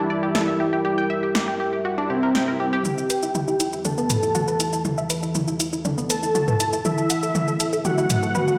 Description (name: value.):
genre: melodic techno.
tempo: 120 BPM.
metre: 4/4.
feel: straight.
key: E minor.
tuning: A4 = 438 Hz.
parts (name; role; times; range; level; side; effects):
unison lead; melody; 0.0-8.6 s; C4 to A4; -27 LUFS; equal; delay.
dark analog pad; sustained chords; 0.0-8.6 s; E3 to E5; -32 LUFS; equal; chorus.
tight sequenced synth; arpeggios; 0.0-8.6 s; B3 to A5; -29 LUFS; equal; chorus, tape echo.
deep house drum kit; drums; 0.3-8.6 s; hi-hat, shaker, snare drum, toms; -27 LUFS; equal; overdrive.
swell; sound effects; 2.0-2.9 s; none; -37 LUFS; equal; none.
soft supersaw; second line; 2.8-8.6 s; E5 to A5; -31 LUFS; equal; low-pass filter, tape echo.
room: wet lush hall reverb, RT60 1.7 s, digital ambience.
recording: played on a big sound system in a bare room, stone room reverb.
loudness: -23 LUFS.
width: mono.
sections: 0.0-2.9 A section; 2.9-8.6 B section.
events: swell 2.0-2.9; build-up 2.9-8.6; drum fill 2.9-8.6; filter sweep on supersaw synth 2.9-8.6; filter sweep on analog synth pad 2.9-8.6.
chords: 0.0 Gm; 2.9 Em; 6.8 Amadd9.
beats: 0.35 | 0.85 1.35 1.85 2.35 | 2.85 3.35 3.85 4.35 | 4.85 5.35 5.85 6.35 | 6.85 7.35 7.85 8.35.